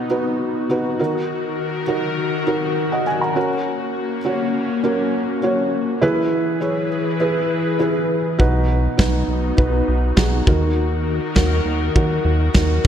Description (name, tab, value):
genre	piano-driven pop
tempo	101 BPM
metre	4/4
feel	straight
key	unclear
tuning	A4 = 440 Hz
part	felt-muted upright piano	accompaniment	0.0-12.9 s	B2 to A#5	-21 LUFS	right 2 dB	none
part	airy breathy pad	sustained chords	0.0-12.9 s	D#3 to B4	-23 LUFS	left 3 dB	chorus
part	chorused synth bass	bass	8.4-12.9 s	B1 to D#2	-20 LUFS	equal	none
part	natural country drum kit	drums	8.4-12.9 s	kick drum, snare drum	-17 LUFS	equal	none
room	moderate lush hall reverb, RT60 2.3 s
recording	dreamy mix soaked in reverb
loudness	-17 LUFS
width	side -9 dB against mid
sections	0.0-12.9 A section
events	none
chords	0.0 B; 1.0 D#m; 3.4 F#; 6.0 E; 8.4 B; 10.5 D#m